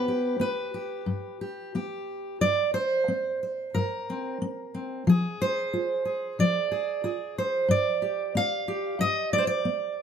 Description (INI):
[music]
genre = folk, solo fingerstyle acoustic guitar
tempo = 91 BPM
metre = 4/4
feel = rubato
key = unclear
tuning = A4 = 441 Hz
[part]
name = fingerpicked steel-string acoustic guitar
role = solo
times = 0.0-10.0 s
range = G2 to F5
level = -25 LUFS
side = right 1 dB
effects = none
[sound]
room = light reverb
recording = close, detailed microphones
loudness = -25 LUFS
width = side -8 dB against mid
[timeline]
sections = 0.0-10.0 A section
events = none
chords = 0.0 G; 2.4 Gsus4; 5.1 Ddim/F; 7.7 G